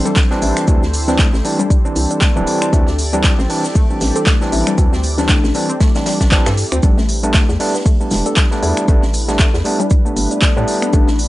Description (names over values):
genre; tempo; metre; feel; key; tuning
deep house; 117 BPM; 4/4; swing 57% on 16ths; unclear; A4 = 440 Hz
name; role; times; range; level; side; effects
warm analog pad; sustained chords; 0.0-11.3 s; D4 to D5; -29 LUFS; equal; chorus, sidechain pumping
overdriven tine electric piano; stabs; 0.0-11.1 s; E3 to D4; -20 LUFS; right 1 dB; sidechain pumping, tape echo
soft struck synth lead; melody; 0.1-11.2 s; D4 to A4; -24 LUFS; left 2 dB; chorus, phaser, tape echo
warbly dusty pluck; arpeggios; 0.1-11.0 s; G3 to A4; -24 LUFS; left 4 dB; chorus, sidechain pumping, analog delay
deep house drum kit; drums; 0.1-11.3 s; finger snaps, handclaps, hi-hat, shaker; -21 LUFS; equal; none
electronic kick drum; drums; 0.2-11.1 s; none; -13 LUFS; equal; none
street-band drum kit; drums; 0.2-11.3 s; hi-hat, shaker, snare drum; -29 LUFS; right 1 dB; sidechain pumping on hats, high-pass filter on hats, high-pass filter on snare, sidechain pumping on perc, high-pass filter on perc, high-pass filter on room
hollow knocking FM bass; bass; 0.4-11.3 s; D1 to A2; -19 LUFS; equal; tube saturation, sidechain pumping
room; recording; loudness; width
studio ambience; dry, gritty hardware recording, nothing above 10.4 kHz; -12 LUFS; side -17 dB against mid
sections
0.0-11.3 A section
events
none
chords
0.0 D9sus4; 6.8 A9sus4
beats
0.17 | 0.68 1.19 1.70 2.22 | 2.73 3.24 3.75 4.27 | 4.78 5.29 5.81 6.32 | 6.83 7.34 7.86 8.37 | 8.88 9.39 9.91 10.42 | 10.93